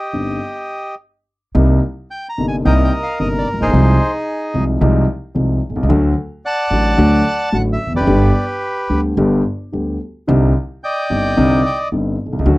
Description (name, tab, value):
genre	tango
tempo	110 BPM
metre	4/4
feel	rubato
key	C minor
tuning	A4 = 440 Hz
part	bandoneon	melody	0.0-11.9 s	Eb4 to Bb5	-19 LUFS	equal	none
part	dark grand piano	accompaniment	0.1-12.6 s	G1 to G4	-16 LUFS	left 1 dB	none
part	upright bass	bass	0.1-12.6 s	E1 to D2	-17 LUFS	right 1 dB	none
room	little or no reverb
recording	dry, close 1970s-style studio recording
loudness	-14 LUFS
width	side -20 dB against mid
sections	0.0-1.5 A section; 1.5-12.6 B section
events	none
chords	0.0 Cmadd9; 1.5 Cm7; 3.7 Fm7/C; 5.9 D; 8.1 G; 10.3 Cmadd9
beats	0.41 0.98 | 1.54 2.10 2.65 3.19 | 3.73 4.27 4.81 5.35 | 5.89 6.43 6.98 7.52 | 8.07 8.62 9.17 9.72 | 10.28 10.83 11.37 11.92 | 12.46